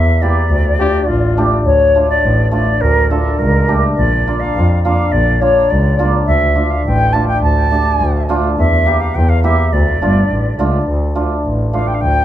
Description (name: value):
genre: klezmer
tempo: 104 BPM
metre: 2/4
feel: straight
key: D harmonic minor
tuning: A4 = 440 Hz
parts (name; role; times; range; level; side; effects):
- concert flute; melody; 0.0-12.2 s; A4 to A5; -16 LUFS; left 1 dB; tape echo
- rich double bass; bass; 0.0-12.2 s; G1 to F2; -14 LUFS; equal; none
- hammered dulcimer; accompaniment; 0.2-11.9 s; A3 to G4; -19 LUFS; right 2 dB; none
- brilliant trombone; second line; 0.8-1.7 s; F4 to G4; -17 LUFS; left 4 dB; none
room: light reverb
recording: dark, warm production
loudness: -11 LUFS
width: side -12 dB against mid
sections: 0.0-1.7 A section; 1.7-10.9 A section; 10.9-12.2 B section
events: flute solo 10.9-12.2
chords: 0.0 Edim; 0.5 Dm; 4.0 Bb; 6.3 Dm; 8.6 Edim; 9.7 Dm